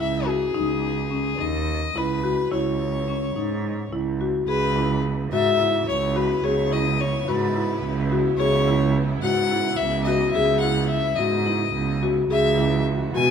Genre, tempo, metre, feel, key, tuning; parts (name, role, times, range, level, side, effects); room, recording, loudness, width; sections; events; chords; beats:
contemporary instrumental, chamber music in an uneven meter; 214 BPM (eighths); 7/8; straight; C# minor; A4 = 440 Hz
clear violin; melody; 0.0-13.3 s; G#4 to G#5; -25 LUFS; left 5 dB
marimba with medium mallets; arpeggios; 0.0-13.3 s; C#4 to G#4; -25 LUFS; left 2 dB
dark cello; bass; 0.0-13.3 s; C#2 to B2; -25 LUFS; right 4 dB
warm symphonic string section; sustained chords; 4.5-13.3 s; C#3 to F#4; -32 LUFS; right 2 dB
moderate recital hall reverb, RT60 1.4 s; minimal, uncompressed stereo recording; -20 LUFS; side -7 dB against mid
0.0-4.5 A section; 4.5-13.3 B section
0.0 C#m; 0.5 G#m/C#; 2.5 C#m; 4.5 C#m7
0.26 | 0.54 0.82 1.10 1.39 1.67 1.95 2.23 | 2.51 2.79 3.07 3.35 3.63 3.91 4.19 | 4.47 4.75 5.03 5.31 5.59 5.87 6.15 | 6.43 6.71 6.99 7.27 7.55 7.83 8.11 | 8.39 8.67 8.95 9.23 9.51 9.79 10.07 | 10.35 10.62 10.90 11.18 11.46 11.74 12.02 | 12.30 12.58 12.86 13.14